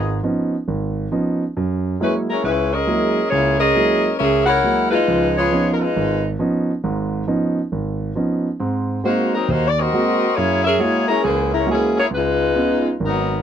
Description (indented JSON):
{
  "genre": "jazz",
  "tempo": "136 BPM",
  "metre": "4/4",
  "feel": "swing 66% on 8ths",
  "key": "unclear",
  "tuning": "A4 = 440 Hz",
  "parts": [
    { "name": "warm saxophone section", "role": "melody", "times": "0.0-6.2, 9.1-13.4 s", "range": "Fb3 to Gb5", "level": "-17 LUFS", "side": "left 2 dB", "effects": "none" },
    { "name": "clear concert grand piano", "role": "accompaniment", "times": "0.0-13.4 s", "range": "Ab1 to Gb4", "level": "-20 LUFS", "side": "right 2 dB", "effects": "none" }
  ],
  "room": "light reverb",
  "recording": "dry, close 1970s-style studio recording",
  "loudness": "-16 LUFS",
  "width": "side -9 dB against mid",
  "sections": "0.0-13.4 A section",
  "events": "none",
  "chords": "0.0 Db9; 1.6 Gb9; 5.1 Db9; 8.6 Ab9; 10.4 Gb9; 12.1 Db9"
}